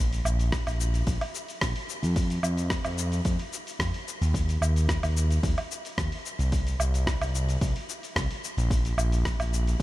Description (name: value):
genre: organic downtempo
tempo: 110 BPM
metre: 4/4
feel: straight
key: unclear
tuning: A4 = 440 Hz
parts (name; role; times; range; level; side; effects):
- smooth gliding synth bass; bass; 0.0-9.8 s; Bb1 to F2; -26 LUFS; equal; sidechain pumping
- dusty soul sampler-style drum kit; drums; 0.1-9.8 s; hi-hat, rim click, shaker, woodblock; -32 LUFS; equal; small room ambience
- electronic kick drum; drums; 0.5-9.8 s; none; -29 LUFS; equal; overdrive, small room ambience
room: digital ambience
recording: none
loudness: -25 LUFS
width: side -17 dB against mid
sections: 0.0-9.8 A section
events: none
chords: none